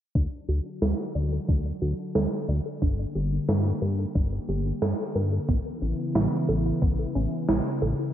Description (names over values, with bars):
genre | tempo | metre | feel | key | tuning
synthwave | 90 BPM | 4/4 | straight | D major | A4 = 440 Hz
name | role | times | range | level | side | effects
lush unison pad | sustained chords | 0.2-8.1 s | C#3 to A4 | -31 LUFS | left 1 dB | chorus, sidechain pumping
analog pluck | arpeggios | 0.2-8.1 s | B3 to D5 | -32 LUFS | right 2 dB | chorus, ping-pong delay
fat analog bass | bass | 0.2-7.9 s | G1 to G2 | -27 LUFS | left 1 dB | none
electronic kick drum | drums | 0.2-7.0 s | none | -25 LUFS | left 1 dB | none
electronic snare drum | drums | 0.8-7.6 s | none | -31 LUFS | right 2 dB | gated reverb, gated reverb snare
room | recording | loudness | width
moderate lush hall reverb, RT60 2.9 s | bright 1980s-style digital production, low-pass filter | -24 LUFS | side -11 dB against mid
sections
0.2-8.1 A section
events
filter sweep on analog synth bass 0.2-8.1; filter sweep on analog synth pad 0.2-8.1; filter sweep on synth arpeggio sound 0.2-8.1; filter sweep 0.2-8.1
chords
0.2 D; 2.8 Gmadd9; 5.5 Aadd9